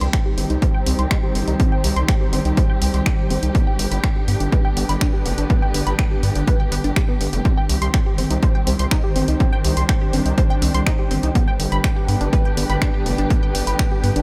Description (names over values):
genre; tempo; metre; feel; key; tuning
melodic techno; 123 BPM; 4/4; straight; C harmonic minor; A4 = 440 Hz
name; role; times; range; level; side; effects
dark symphonic string section; sustained chords; 0.0-14.2 s; D3 to G4; -30 LUFS; equal; sidechain pumping
unison pluck; arpeggios; 0.0-14.2 s; B3 to C6; -29 LUFS; equal; sidechain pumping, digital delay
gritty driven synth bass; bass; 0.0-14.2 s; F1 to G2; -23 LUFS; equal; sidechain pumping
punchy analog drum machine; drums; 0.0-14.2 s; finger snaps, hi-hat; -30 LUFS; equal; overdrive, sidechain pumping on hats, sidechain pumping on toms, sidechain pumping on cymbals
airy breathy pad; texture; 0.0-14.2 s; Eb3 to G5; -32 LUFS; equal; chorus, sidechain pumping
electronic kick drum; drums; 0.1-13.9 s; none; -21 LUFS; equal; none
room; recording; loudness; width
little or no reverb; none; -19 LUFS; mono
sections
0.0-14.2 A section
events
none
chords
0.0 Cm; 3.5 G; 7.5 Cm; 11.4 G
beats
0.13 0.62 1.11 | 1.60 2.08 2.57 3.06 | 3.55 4.04 4.52 5.01 | 5.50 5.99 6.47 6.96 | 7.45 7.94 8.43 8.91 | 9.40 9.89 10.38 10.87 | 11.35 11.84 12.33 12.82 | 13.30 13.79